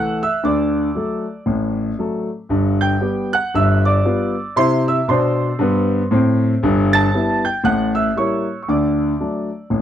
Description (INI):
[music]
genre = jazz, stride piano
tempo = 117 BPM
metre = 4/4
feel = swing 58% on 8ths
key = D major from 6.6 s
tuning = A4 = 439 Hz
[part]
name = clear concert grand piano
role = solo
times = 0.0-9.8 s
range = G1 to A6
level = -16 LUFS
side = equal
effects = none
[sound]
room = light reverb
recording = dry, close 1970s-style studio recording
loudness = -16 LUFS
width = side -10 dB against mid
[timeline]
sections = 0.0-9.8 A section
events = none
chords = 0.4 D; 2.5 G; 3.5 G7; 4.6 C; 6.6 Em/G; 7.6 A7b9; 8.7 D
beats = | 0.44 0.96 1.47 1.99 | 2.50 3.02 3.53 4.04 | 4.56 5.08 5.59 6.10 | 6.62 7.13 7.65 8.16 | 8.68 9.19 9.71